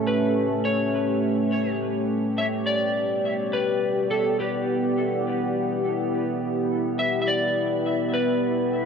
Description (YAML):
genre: ambient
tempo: 104 BPM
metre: 4/4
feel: swing 54% on 16ths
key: E dorian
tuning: A4 = 438 Hz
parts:
  - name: electric slide guitar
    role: melody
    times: 0.0-8.9 s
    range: G4 to E5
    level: -26 LUFS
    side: left 2 dB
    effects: dub echo
  - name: deep dark ambient pad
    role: sustained chords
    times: 0.0-8.9 s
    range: A3 to G5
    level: -24 LUFS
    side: equal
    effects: chorus, built-in reverb
room: moderate huge ambient reverb, RT60 7.9 s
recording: dark, warm production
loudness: -22 LUFS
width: side -6 dB against mid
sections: 0.0-2.4 A section; 2.4-8.9 B section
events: none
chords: 0.0 A9; 2.4 Em9; 7.0 Asus2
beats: | 0.07 0.64 1.22 1.80 | 2.38 2.95 3.53 4.11 | 4.68 5.26 5.84 6.41 | 6.99 7.57 8.14 8.72